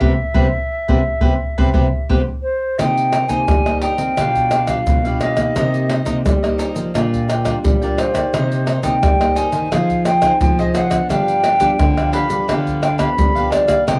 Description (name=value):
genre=samba and choro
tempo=87 BPM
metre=4/4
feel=straight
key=C minor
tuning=A4 = 440 Hz
part: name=reedy concert flute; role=melody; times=0.0-14.0 s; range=C5 to B5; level=-21 LUFS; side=equal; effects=cassette tape
part: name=cavaquinho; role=accompaniment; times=0.0-14.0 s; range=D4 to G5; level=-28 LUFS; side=equal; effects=cassette tape
part: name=nylon-string guitar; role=accompaniment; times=0.0-14.0 s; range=G2 to Ab4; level=-28 LUFS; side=equal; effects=cassette tape
part: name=nylon-string guitar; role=bass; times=0.0-14.0 s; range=Bb2 to C4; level=-24 LUFS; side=equal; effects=none
part: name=surdo, egg shaker, pandeiro and tamborim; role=percussion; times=0.0-14.0 s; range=none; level=-21 LUFS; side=equal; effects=none
room=light reverb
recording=home recording on cassette, small room ambience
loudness=-17 LUFS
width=mono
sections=0.0-2.8 A section; 2.8-14.0 B section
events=band accent 0.0-2.8; drum fill 1.7-2.8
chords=0.0 Cmaj7; 2.8 Cm7; 4.2 G7/B; 5.6 Cm7; 7.0 Gm7/Bb; 8.3 Cm7; 9.7 Fm7; 11.1 G7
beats=| 0.01 0.71 1.40 2.10 | 2.79 3.48 4.18 4.87 | 5.56 6.26 6.95 7.64 | 8.34 9.03 9.72 10.41 | 11.11 11.80 12.49 13.18 | 13.88